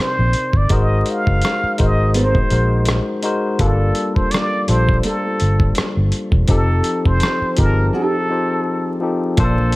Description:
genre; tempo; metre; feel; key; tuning
R&B, neo-soul; 83 BPM; 4/4; swing 54% on 16ths; unclear; A4 = 440 Hz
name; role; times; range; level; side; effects
trumpet with plunger mute; melody; 0.0-9.8 s; A4 to F5; -22 LUFS; right 1 dB; slapback echo
barky tine electric piano; accompaniment; 0.0-9.8 s; Bb2 to A5; -21 LUFS; left 2 dB; overdrive
vintage muted fingered electric bass; bass; 0.0-9.8 s; E1 to Bb1; -17 LUFS; equal; none
dusty soul sampler-style drum kit; drums; 0.0-9.8 s; hi-hat, kick drum, rim click; -19 LUFS; equal; overdrive
nylon-string guitar; second line; 2.1-8.2 s; Bb3 to Bb4; -22 LUFS; right 3 dB; none
congas; percussion; 9.6-9.7 s; none; -33 LUFS; right 1 dB; none
room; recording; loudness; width
studio reverb; dark, warm production, vinyl crackle; -15 LUFS; side -20 dB against mid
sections
0.0-9.4 A section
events
break 7.9-9.4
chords
0.0 Cm9; 0.7 Ab9; 3.6 Gm9; 6.5 F9

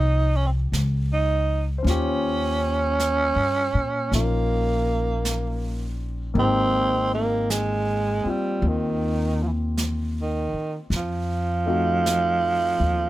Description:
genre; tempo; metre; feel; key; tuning
jazz ballad; 53 BPM; 4/4; swing 67% on 8ths; F minor; A4 = 440 Hz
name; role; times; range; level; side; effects
growling tenor saxophone; melody; 0.0-13.1 s; Eb3 to Eb4; -24 LUFS; right 3 dB; none
warm grand piano; accompaniment; 0.0-13.1 s; F3 to C5; -30 LUFS; left 4 dB; none
upright bass; bass; 0.0-13.1 s; Ab1 to Bb2; -24 LUFS; left 1 dB; none
jazz brush drum kit; drums; 0.7-13.1 s; brushed snare drum, hi-hat, snare drum; -33 LUFS; right 3 dB; none
room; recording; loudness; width
little or no reverb; close, detailed microphones; -21 LUFS; side -15 dB against mid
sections
0.0-13.1 A section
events
none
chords
0.0 Fsus2; 1.9 Eb13; 6.4 Abmaj9; 10.9 F7b9

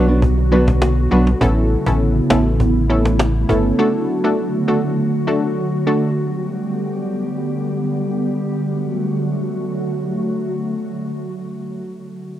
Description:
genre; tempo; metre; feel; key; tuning
dancehall; 101 BPM; 4/4; straight; D major; A4 = 440 Hz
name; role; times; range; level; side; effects
analog pluck; accompaniment; 0.0-6.0 s; A3 to B4; -20 LUFS; equal; chorus, cassette tape
glassy FM pad; sustained chords; 0.0-11.6 s; C#3 to G4; -20 LUFS; equal; ensemble chorus, built-in reverb, cassette tape
nylon-string guitar; arpeggios; 0.0-1.3 s; F#3 to F#4; -17 LUFS; right 1 dB; cassette tape
sub bass with octave; bass; 0.0-3.7 s; G1 to B1; -17 LUFS; equal; none
cajon; drums; 0.2-3.6 s; none; -20 LUFS; equal; none
room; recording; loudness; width
studio reverb; home recording on cassette; -16 LUFS; side -12 dB against mid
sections
0.0-8.5 A section; 8.5-10.9 B section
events
none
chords
0.0 Bm; 1.4 Aadd9; 3.8 D; 6.2 G; 8.5 D

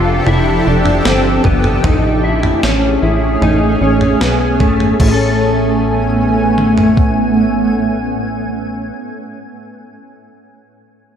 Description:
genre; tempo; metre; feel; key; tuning
dream pop; 76 BPM; 4/4; straight; unclear; A4 = 440 Hz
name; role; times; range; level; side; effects
shimmering ambient pad; sustained chords; 0.0-8.9 s; A2 to G#5; -15 LUFS; right 1 dB; chorus, built-in reverb
mellow electric guitar; arpeggios; 0.0-9.2 s; A3 to A4; -17 LUFS; left 1 dB; ensemble chorus, digital delay
plucky analog bass; bass; 0.0-8.9 s; F1 to B1; -18 LUFS; equal; none
gated 80s digital drum machine; drums; 0.3-7.2 s; crash cymbal, kick drum, snare drum, toms; -17 LUFS; equal; gated reverb, gated reverb snare
room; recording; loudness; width
moderate scoring stage reverb, RT60 2.0 s; none; -11 LUFS; side -8 dB against mid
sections
0.0-5.0 A section; 5.0-8.2 B section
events
none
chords
0.0 F6; 1.8 Amaj7

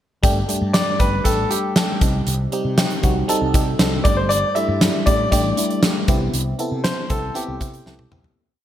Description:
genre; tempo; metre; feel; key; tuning
1980s-style pop; 118 BPM; 4/4; straight; unclear; A4 = 440 Hz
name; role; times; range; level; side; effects
FM electric piano; accompaniment; 0.2-8.4 s; G2 to A4; -23 LUFS; equal; chorus, phaser
mellow fretless electric bass; bass; 0.2-8.3 s; G1 to C3; -24 LUFS; equal; none
gated 80s drum kit; drums; 0.2-8.4 s; hi-hat, kick drum, snare drum, toms; -19 LUFS; equal; gated reverb
clear concert grand piano; melody; 0.7-8.1 s; G4 to E5; -22 LUFS; left 1 dB; digital delay
room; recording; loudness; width
moderate lush hall reverb, RT60 2.0 s, studio reverb; bright 1980s-style digital production; -17 LUFS; side -11 dB against mid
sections
0.2-8.4 verse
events
fade-out 6.3-8.4; drum fill 7.9-8.4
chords
0.2 Gsus2; 2.0 Cm; 4.1 Gsus2; 6.1 Cmaj7

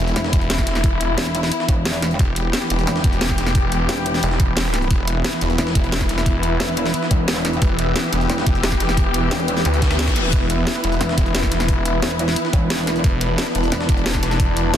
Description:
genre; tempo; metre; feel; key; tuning
dark technical drum and bass; 177 BPM; 4/4; straight; E minor; A4 = 442 Hz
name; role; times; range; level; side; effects
muted studio string section; sustained chords; 0.0-14.8 s; E3 to G4; -24 LUFS; left 2 dB; vintage 12-bit sampler grit, sidechain pumping
snarling distorted saw bass; bass; 0.0-14.7 s; E1 to D2; -22 LUFS; equal; tube saturation
granular cloud pad; texture; 1.0-14.8 s; E4 to E6; -27 LUFS; equal; built-in reverb, sidechain pumping
breakbeat sampler-style drum kit; drums; 0.1-14.8 s; hi-hat, snare drum; -29 LUFS; right 1 dB; high-pass filter on hats, high-pass filter on snare, high-pass filter on room
pulsing pluck wobble bass; bass; 0.2-14.8 s; E1; -23 LUFS; equal; chorus
drum and bass drum kit; drums; 0.2-14.8 s; hi-hat, snare drum; -24 LUFS; equal; none
electronic kick drum; drums; 0.3-14.5 s; none; -18 LUFS; equal; none
reverse cymbal; sound effects; 9.8-10.3 s; none; -27 LUFS; left 5 dB; none
room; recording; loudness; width
light reverb; dense, heavily limited modern master; -16 LUFS; side -10 dB against mid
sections
0.0-14.8 A section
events
reverse cymbal 9.8-10.3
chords
0.0 E5

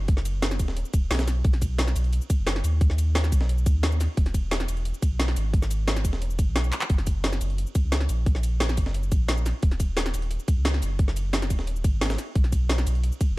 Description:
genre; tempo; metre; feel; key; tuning
liquid drum and bass; 176 BPM; 4/4; straight; unclear; A4 = 440 Hz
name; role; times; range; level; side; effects
warm sub bass; bass; 0.0-13.4 s; D#1 to D#2; -25 LUFS; equal; none
breakbeat sampler-style drum kit; drums; 0.1-13.3 s; hi-hat, snare drum; -34 LUFS; equal; high-pass filter on hats, high-pass filter on snare
drum and bass drum kit; drums; 0.1-13.3 s; cabasa, handclaps, hi-hat, ride cymbal, snare drum; -31 LUFS; equal; overdrive
electronic kick drum; drums; 0.1-13.3 s; none; -22 LUFS; equal; none
room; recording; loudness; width
digital ambience; dark, warm production; -22 LUFS; side -20 dB against mid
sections
0.0-13.4 A section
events
drum fill 6.7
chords
none

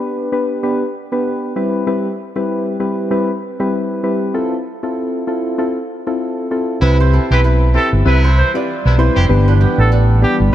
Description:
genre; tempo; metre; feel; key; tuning
afrobeats; 97 BPM; 4/4; swing 58% on 16ths; C major; A4 = 440 Hz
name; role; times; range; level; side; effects
soft electric-piano-like synth keys; accompaniment; 0.0-10.5 s; G3 to B4; -18 LUFS; left 1 dB; chorus, tremolo
bright horn section; second line; 6.8-9.2 s; C3 to G4; -24 LUFS; left 1 dB; none
granular cloud pad; sustained chords; 8.5-10.5 s; E3 to B4; -26 LUFS; equal; built-in reverb
fingered electric bass; bass; 6.8-10.5 s; F1 to C2; -12 LUFS; equal; none
kora; riff; 7.0-10.5 s; B3 to D5; -23 LUFS; right 5 dB; tape echo
clear trumpet; melody; 7.3-10.4 s; G4 to C5; -20 LUFS; right 1 dB; tape echo
room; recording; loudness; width
light reverb, small room ambience; dark, warm production; -14 LUFS; side -12 dB against mid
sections
0.0-6.8 A section; 6.8-10.5 B section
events
none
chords
0.0 G; 1.6 Cmaj7/G; 4.3 Fmaj7; 6.8 Cmaj7; 9.3 G

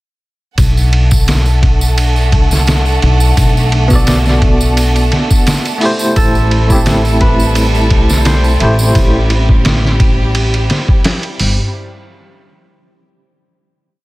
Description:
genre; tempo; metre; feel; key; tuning
trip hop; 86 BPM; 4/4; swing 54% on 16ths; A dorian; A4 = 440 Hz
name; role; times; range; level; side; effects
warm studio violin section; sustained chords; 0.6-11.7 s; G3 to F#5; -20 LUFS; right 1 dB; none
upright bass; bass; 0.6-11.6 s; G1 to C2; -12 LUFS; equal; none
trip hop sampler-style drum kit; drums; 0.6-11.6 s; hi-hat, kick drum, ride cymbal, snare drum; -13 LUFS; equal; none
tambourine; percussion; 0.6-8.9 s; none; -25 LUFS; right 2 dB; none
bell-like tine electric piano; accompaniment; 3.9-9.3 s; A3 to D5; -16 LUFS; equal; tremolo, tape echo
concert harp; arpeggios; 6.2-10.2 s; A4 to E5; -22 LUFS; right 1 dB; vintage 12-bit sampler grit, tape echo
room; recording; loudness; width
small room ambience; dense, heavily limited modern master; -9 LUFS; side -19 dB against mid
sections
0.6-11.7 groove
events
none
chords
0.6 Bm7; 6.2 Am7

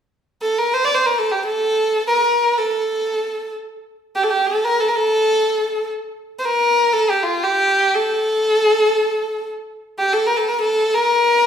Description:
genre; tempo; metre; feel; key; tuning
Arabic maqam ensemble; free time; none; none; A maqam bayati; A4 = 437 Hz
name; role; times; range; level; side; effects
rich violin; solo; 0.4-11.5 s; F4 to D5; -16 LUFS; equal; none
room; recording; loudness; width
wet large studio reverb, RT60 1.2 s; band playing live in one room; -16 LUFS; side -8 dB against mid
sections
0.1-11.5 A section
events
none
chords
none

